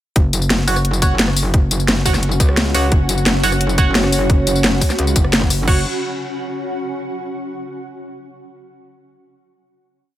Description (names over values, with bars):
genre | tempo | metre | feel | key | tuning
dark technical drum and bass | 174 BPM | 4/4 | straight | unclear | A4 = 440 Hz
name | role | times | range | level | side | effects
metallic wobble bass | bass | 0.2-5.8 s | F#1 to C#2 | -18 LUFS | equal | chorus, overdrive
drum and bass drum kit | drums | 0.2-5.7 s | crash cymbal, hi-hat, rim click, snare drum, tambourine | -18 LUFS | left 1 dB | overdrive
electronic kick drum | drums | 0.2-5.7 s | none | -15 LUFS | equal | overdrive
granular cloud pad | texture | 1.4-7.0 s | C#4 to C#6 | -25 LUFS | equal | built-in reverb, sidechain pumping
band-passed chord stab | stabs | 0.7-5.8 s | F#4 to F#5 | -23 LUFS | right 4 dB | phaser, digital delay
dark analog pad | sustained chords | 2.9-5.8 s | C#4 to C#5 | -24 LUFS | right 2 dB | chorus, phaser, sidechain pumping
room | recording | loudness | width
light reverb | none | -14 LUFS | side -13 dB against mid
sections
0.2-5.7 drop; 5.7-7.1 final chord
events
drop 0.2-5.7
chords
0.2 F#5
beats
| 0.16 0.50 0.85 1.19 | 1.54 1.88 2.23 2.57 | 2.92 3.26 3.61 3.95 | 4.30 4.64 4.99 5.33 | 5.68 6.02 6.37 6.71